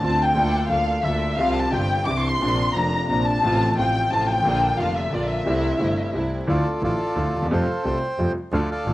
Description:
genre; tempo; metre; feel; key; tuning
tango; 177 BPM; 3/4; rubato; unclear; A4 = 442 Hz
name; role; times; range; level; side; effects
dark chamber violin section; second line; 0.0-6.1 s; D5 to D6; -22 LUFS; left 2 dB; cassette tape, plate reverb
clear concert grand piano; accompaniment; 0.0-8.9 s; F1 to F4; -25 LUFS; equal; cassette tape
bright studio string section; stabs; 0.0-6.5 s; A3 to A4; -30 LUFS; right 1 dB; cassette tape, analog delay
clear double bass; bass; 0.0-8.9 s; F1 to F2; -26 LUFS; equal; none
bandoneon; melody; 6.5-8.9 s; F4 to G5; -25 LUFS; equal; none
room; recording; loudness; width
moderate booth ambience, RT60 0.2 s; home recording on cassette, vinyl crackle; -19 LUFS; side -16 dB against mid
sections
0.0-6.5 A section; 6.5-8.9 B section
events
violin section solo 0.0-6.5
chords
0.4 Bbmaj7/D; 1.4 Csus4; 2.1 Cadd9; 2.4 Bbadd9; 3.4 F/A; 4.4 Bb; 5.5 C6; 6.5 Dmadd9; 7.5 Fadd9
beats
0.03 | 0.37 0.71 1.05 | 1.39 1.73 2.07 | 2.41 2.75 3.09 | 3.43 3.77 4.10 | 4.44 4.78 5.12 | 5.46 5.80 6.14 | 6.48 6.82 7.16 | 7.50 7.84 8.18 | 8.52 8.86

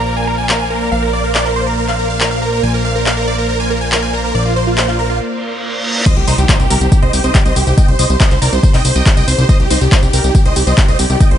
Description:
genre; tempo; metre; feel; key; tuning
uplifting trance; 140 BPM; 4/4; straight; C minor; A4 = 437 Hz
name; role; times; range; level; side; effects
big supersaw lead; melody; 0.0-11.4 s; Eb4 to Ab5; -18 LUFS; right 1 dB; phaser, sidechain pumping, dub echo
supersaw pad; sustained chords; 0.0-11.4 s; Bb3 to F5; -22 LUFS; right 1 dB; sidechain pumping
fat analog bass; bass; 0.0-11.4 s; Bb1 to C2; -16 LUFS; equal; sidechain pumping
big-room dance drum kit; drums; 0.5-11.4 s; crash cymbal, handclaps, hi-hat, tambourine; -18 LUFS; left 1 dB; none
reverse cymbal and impact; sound effects; 5.4-7.8 s; none; -22 LUFS; right 1 dB; none
electronic kick drum; drums; 6.1-11.3 s; none; -11 LUFS; equal; none
room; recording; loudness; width
little or no reverb; nothing above 10.7 kHz; -11 LUFS; side -10 dB against mid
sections
0.0-6.1 A section; 6.1-11.4 B section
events
break 5.2-6.1; reverse cymbal 5.4-6.1; drop 6.1-11.4; impact 6.1-7.8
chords
0.0 Bbadd9; 6.1 Cm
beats
0.06 0.49 | 0.92 1.35 1.78 2.21 | 2.63 3.06 3.49 3.92 | 4.35 4.78 5.21 5.63 | 6.06 6.49 6.92 7.35 | 7.78 8.21 8.63 9.06 | 9.49 9.92 10.35 10.78 | 11.21

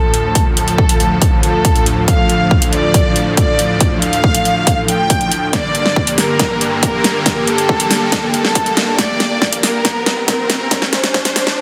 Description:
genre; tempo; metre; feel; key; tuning
heavy wobble dubstep; 139 BPM; 4/4; half-time; D minor; A4 = 443 Hz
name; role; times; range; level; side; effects
warm studio violin section; melody; 0.0-11.6 s; A4 to G5; -20 LUFS; equal; low-pass filter, digital delay
supersaw chords; sustained chords; 0.0-11.5 s; D2 to Bb3; -22 LUFS; equal; sidechain pumping
warbly tape-like pad; texture; 0.1-11.6 s; Bb3 to G5; -26 LUFS; equal; chorus, built-in reverb, sidechain pumping
dubstep drum kit; drums; 0.1-11.6 s; hi-hat, snare drum; -19 LUFS; equal; none
electronic kick drum; drums; 0.4-11.2 s; none; -18 LUFS; equal; none
riser and swell; sound effects; 6.7-11.6 s; none; -28 LUFS; equal; none
room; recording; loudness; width
moderate lush hall reverb, RT60 2.0 s; dense, heavily limited modern master, high-pass filter; -14 LUFS; mono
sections
0.0-11.6 A section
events
build-up 0.0-11.6; filter sweep 0.0-11.6; drum fill 5.5-11.6; riser 7.4-11.6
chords
0.0 Dm; 5.5 Gm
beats
| 0.35 0.78 1.22 1.65 | 2.08 2.51 2.94 3.37 | 3.81 4.24 4.67 5.10 | 5.53 5.96 6.40 6.83 | 7.26 7.69 8.12 8.55 | 8.99 9.42 9.85 10.28 | 10.71 11.14 11.58

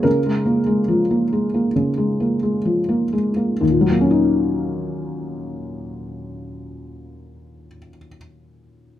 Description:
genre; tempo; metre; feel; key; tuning
neoclassical minimalist piano; 62-73 BPM; 4/4; rubato; Eb minor; A4 = 441 Hz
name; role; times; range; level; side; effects
felt-muted upright piano; solo; 0.0-9.0 s; Eb2 to Bb4; -18 LUFS; equal; none
room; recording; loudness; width
light reverb; none; -17 LUFS; side -12 dB against mid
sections
0.0-3.6 A section; 3.6-7.3 B section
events
slowing down 0.0-3.6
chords
0.0 Bbm7/Db; 3.6 Ebm7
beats
| 0.05 0.89 1.76 2.67 | 3.62 4.54 5.46 6.36

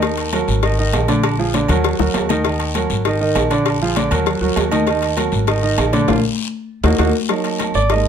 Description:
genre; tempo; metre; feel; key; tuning
latin, salsa; 198 BPM; 4/4; straight; Eb harmonic minor; A4 = 436 Hz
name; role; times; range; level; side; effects
clear grand piano; accompaniment; 0.0-8.1 s; D3 to Eb5; -18 LUFS; right 3 dB; none
upright bass; bass; 0.0-8.1 s; Ab1 to Eb2; -20 LUFS; equal; none
agogo bells and timbales; percussion; 0.0-8.0 s; none; -25 LUFS; right 5 dB; none
congas; percussion; 0.0-8.1 s; none; -25 LUFS; left 6 dB; none
cowbell and bongos; percussion; 0.0-8.1 s; none; -24 LUFS; left 8 dB; none
guiro; percussion; 0.0-8.1 s; none; -30 LUFS; left 8 dB; none
room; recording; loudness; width
light reverb; none; -15 LUFS; side -8 dB against mid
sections
0.0-7.3 A section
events
drum fill 2.0-2.4, 6.1-7.3; band accent 6.1-7.3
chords
0.0 Ebm; 0.6 Absus2; 1.2 Bb7; 1.8 Ebm; 3.1 Absus2; 3.7 Bb7; 4.3 Ebm; 5.5 Absus2; 6.1 Bb; 6.7 Ebm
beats
| 0.02 0.33 0.63 0.93 | 1.24 1.54 1.84 2.15 | 2.45 2.75 3.05 3.36 | 3.66 3.96 4.27 4.57 | 4.87 5.18 5.48 5.78 | 6.08 6.39 6.69 6.99 | 7.29 7.60 7.90

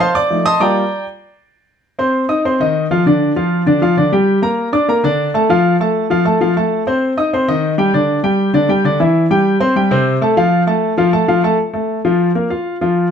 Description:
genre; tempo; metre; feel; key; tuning
latin; 197 BPM; 4/4; straight; Bb major; A4 = 440 Hz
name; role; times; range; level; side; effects
warm baby grand piano; solo; 0.0-13.1 s; C3 to Eb6; -12 LUFS; equal; none
room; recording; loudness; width
moderate large studio reverb, RT60 0.8 s; close, detailed microphones; -12 LUFS; side -7 dB against mid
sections
0.0-1.8 A section; 1.8-11.6 B section; 11.6-13.1 C section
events
grand piano solo 0.0-1.8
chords
0.0 F7; 0.6 Gm7; 1.8 F5; 3.1 Dmadd11; 4.3 Gmadd9; 5.5 F; 6.7 Eb6; 7.9 G5; 9.1 C; 10.4 F; 11.6 Bb5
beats
0.00 0.30 | 0.61 0.92 1.22 1.53 | 1.83 2.14 2.44 2.75 | 3.05 3.36 3.66 3.97 | 4.27 4.58 4.88 5.19 | 5.49 5.80 6.10 6.41 | 6.71 7.02 7.32 7.63 | 7.93 8.24 8.54 8.85 | 9.15 9.45 9.76 10.06 | 10.37 10.67 10.98 11.28 | 11.59 11.89 12.20 12.50 | 12.81

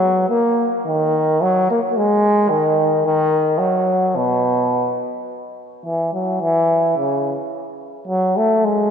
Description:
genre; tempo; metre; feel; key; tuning
alpine folk; 108 BPM; 2/4; rubato; E major from 5.3 s; A4 = 440 Hz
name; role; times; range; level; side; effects
clear euphonium; solo; 0.0-8.9 s; B2 to A#3; -16 LUFS; equal; tape echo
room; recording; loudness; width
wet lush hall reverb, RT60 2.8 s; dreamy mix soaked in reverb; -15 LUFS; side -7 dB against mid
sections
0.0-5.3 A section; 5.3-8.9 B section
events
none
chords
none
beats
0.29 | 0.86 1.42 | 1.97 2.51 | 3.06 3.61 | 4.17 4.72 | 5.29 5.85 | 6.41 6.97 | 7.52 8.08 | 8.63

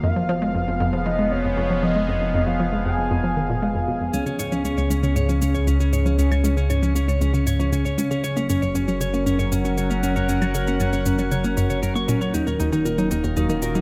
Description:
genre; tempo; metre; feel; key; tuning
ambient, sequencer-driven space music; 117 BPM; 4/4; straight; unclear; A4 = 441 Hz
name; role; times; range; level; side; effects
pulse-width lead; melody; 0.0-4.1 s; Db5 to Ab5; -30 LUFS; equal; chorus, shimmer reverb, delay
sweeping resonant pad; sustained chords; 0.0-13.8 s; Db3 to Gb5; -29 LUFS; equal; chorus, shimmer reverb
hollow square pluck; riff; 0.0-13.8 s; Db2 to Bb3; -27 LUFS; equal; chorus, shimmer reverb, delay
warm sub bass; bass; 0.0-13.8 s; Eb1 to Db2; -27 LUFS; equal; none
clean electric guitar; arpeggios; 4.1-13.8 s; Db4 to Db6; -28 LUFS; equal; shimmer reverb, delay
cabasa and claves; percussion; 4.1-13.8 s; none; -38 LUFS; equal; overdrive, delay
room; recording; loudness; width
moderate plate reverb, RT60 2.9 s; echo-heavy mix; -22 LUFS; mono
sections
0.0-13.8 A section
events
none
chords
0.0 Fdim; 4.1 Db; 8.2 Gb; 12.3 Ebmadd9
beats
| 0.03 0.55 1.06 1.57 | 2.08 2.60 3.11 3.62 | 4.13 4.65 5.16 5.67 | 6.19 6.70 7.21 7.72 | 8.24 8.75 9.26 9.78 | 10.29 10.80 11.31 11.83 | 12.34 12.85 13.37

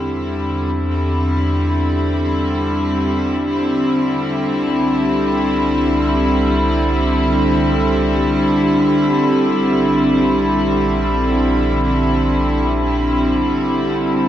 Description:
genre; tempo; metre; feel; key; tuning
ambient; free time; none; none; unclear; A4 = 440 Hz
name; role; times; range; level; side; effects
rich studio string section; sustained chords; 0.0-14.3 s; D3 to E4; -15 LUFS; equal; low-pass filter
deep rumbling drone; bass; 0.0-13.9 s; Bb1 to E2; -23 LUFS; equal; built-in reverb
room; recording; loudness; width
wet cathedral reverb, RT60 4.9 s; worn, warbling old tape, cassette tape, warbly pitch drift; -14 LUFS; side -11 dB against mid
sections
0.0-14.0 A section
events
fade-in on string section 0.0-14.0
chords
0.0 Cadd9/E; 3.8 Cadd9; 8.9 Bbadd9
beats
free time

